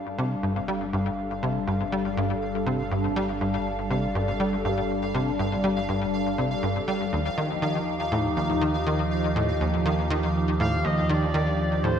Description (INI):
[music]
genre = ambient, sequencer-driven space music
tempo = 121 BPM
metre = 4/4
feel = straight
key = unclear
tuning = A4 = 436 Hz
[part]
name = phased analog pad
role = sustained chords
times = 0.0-12.0 s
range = F3 to A4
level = -27 LUFS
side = equal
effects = phaser, chorus
[part]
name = analog drone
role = bass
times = 0.4-12.0 s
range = G1 to Eb2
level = -32 LUFS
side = equal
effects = chorus
[part]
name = pulsing gated texture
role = texture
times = 0.0-12.0 s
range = F5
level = -34 LUFS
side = right 1 dB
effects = chorus, built-in reverb
[part]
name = tight sequencer bass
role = riff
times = 0.2-12.0 s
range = Eb2 to G3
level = -27 LUFS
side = equal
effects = ensemble chorus, vintage 12-bit sampler grit, ping-pong delay
[part]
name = expressive portamento lead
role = melody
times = 10.6-12.0 s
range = C5 to F5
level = -28 LUFS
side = equal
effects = chorus, ping-pong delay
[sound]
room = moderate plate reverb, RT60 2.6 s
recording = echo-heavy mix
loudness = -23 LUFS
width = side -8 dB against mid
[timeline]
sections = 0.0-12.0 A section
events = fade-in on synth drone 0.0-12.0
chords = 0.0 Gsus2; 7.1 Ebadd9